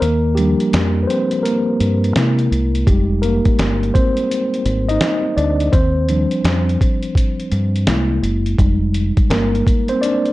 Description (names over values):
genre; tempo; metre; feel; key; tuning
lo-fi hip hop; 84 BPM; 4/4; swing 65% on 16ths; F dorian; A4 = 440 Hz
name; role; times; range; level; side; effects
mellow tine electric piano; accompaniment; 0.0-10.3 s; F3 to Eb5; -18 LUFS; equal; medium stereo tremolo, cassette tape, low-pass filter
deep dub fingered electric bass; bass; 0.0-9.6 s; F1 to C3; -18 LUFS; equal; none
dusty soul sampler-style drum kit; drums; 0.0-10.3 s; hi-hat, kick drum, snare drum; -18 LUFS; equal; none
room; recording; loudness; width
light reverb; dark, warm production, nothing above 10.5 kHz; -14 LUFS; side -18 dB against mid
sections
0.0-10.3 A section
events
break 0.0-2.9; tine electric piano solo 0.0-10.3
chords
0.0 Ebmaj9; 2.2 Caug7; 2.9 Fm9; 5.7 Ebmaj9; 7.9 Caug7; 8.6 Fm9